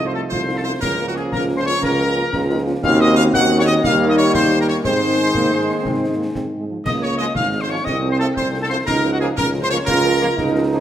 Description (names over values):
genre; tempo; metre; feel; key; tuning
military-style march for wind band; 119 BPM (dotted quarters); 6/8; straight; unclear; A4 = 444 Hz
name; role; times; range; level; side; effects
clear trumpet section; melody; 0.0-10.7 s; Gb4 to Gb5; -23 LUFS; equal; none
mellow euphonium; second line; 0.0-10.8 s; F3 to F4; -24 LUFS; right 3 dB; none
mellow woodwind section; second line; 0.0-10.7 s; Gb4 to Gb5; -27 LUFS; left 2 dB; none
dark French horn section; accompaniment; 0.0-10.8 s; F3 to Bb4; -25 LUFS; left 4 dB; none
warm trombone section; sustained chords; 0.0-10.8 s; Eb3 to Bb3; -26 LUFS; right 2 dB; none
warm tuba; bass; 0.0-10.8 s; Ab1 to Ab2; -21 LUFS; right 1 dB; none
bright piccolo; second line; 0.1-10.7 s; Gb5 to Gb6; -26 LUFS; left 4 dB; none
concert snare drum, concert bass drum and clash cymbals; drums; 0.3-10.8 s; none; -29 LUFS; left 1 dB; none
room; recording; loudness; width
wet recital hall reverb, RT60 1.4 s; none; -15 LUFS; side -11 dB against mid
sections
0.0-10.8 A section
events
none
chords
0.0 F7/C; 0.8 Bbm/Db; 2.8 Ebm7; 3.8 Eb; 4.8 Ab; 6.9 Db; 7.9 F/C; 8.9 Bbm/Db